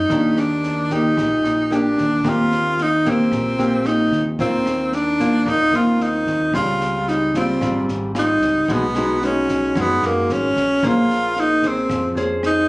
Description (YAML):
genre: bossa nova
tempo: 112 BPM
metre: 4/4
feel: straight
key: Eb major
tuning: A4 = 441 Hz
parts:
  - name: breathy tenor saxophone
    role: melody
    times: 0.0-12.7 s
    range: Bb3 to F4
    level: -18 LUFS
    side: equal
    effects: none
  - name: deep dub fingered electric bass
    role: bass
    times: 0.0-12.7 s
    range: Ab1 to F#2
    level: -29 LUFS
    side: equal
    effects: none
  - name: nylon-string guitar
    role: accompaniment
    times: 0.1-12.7 s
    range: Ab2 to C5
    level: -21 LUFS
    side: equal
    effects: none
  - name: compact cocktail drum kit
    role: drums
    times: 0.1-12.6 s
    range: kick drum, rim click, snare drum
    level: -29 LUFS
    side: equal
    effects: none
room: light reverb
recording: recorded on a phone in the room, club ambience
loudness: -16 LUFS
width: side -24 dB against mid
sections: 0.0-2.2 A section; 2.2-12.7 B section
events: none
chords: 0.1 Ebmaj7; 2.2 Eb6; 4.4 Cm11/Eb; 6.5 Dbmaj9#11; 8.7 B6; 10.8 Bbm9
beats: | 0.10 0.64 1.17 1.71 | 2.25 2.78 3.32 3.85 | 4.39 4.93 5.46 6.00 | 6.54 7.07 7.61 8.14 | 8.68 9.22 9.75 10.29 | 10.82 11.36 11.90 12.43